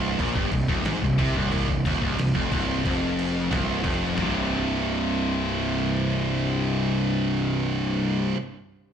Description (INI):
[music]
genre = heavy metal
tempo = 180 BPM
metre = 4/4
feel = straight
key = unclear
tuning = A4 = 440 Hz
[part]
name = heavy high-gain guitar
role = riff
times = 0.0-8.4 s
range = C2 to C3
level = -27 LUFS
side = right 9 dB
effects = distortion, slapback echo
[part]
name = high-gain distorted guitar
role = riff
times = 0.0-8.3 s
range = C2 to C3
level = -28 LUFS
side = left 9 dB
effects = distortion, slapback echo
[part]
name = fuzz picked electric bass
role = bass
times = 0.0-8.3 s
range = C1 to C2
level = -28 LUFS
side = equal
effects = overdrive
[part]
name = trip hop sampler-style drum kit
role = drums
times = 0.2-4.3 s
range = crash cymbal, kick drum, snare drum, toms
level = -29 LUFS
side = equal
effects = none
[sound]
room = little or no reverb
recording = live gig heard through the venue's PA, club reverb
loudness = -22 LUFS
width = side -8 dB against mid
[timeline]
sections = 0.0-4.2 A section; 4.2-6.8 B section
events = kick and snare drop out 3.9-4.2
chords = 0.0 N.C.; 4.2 C5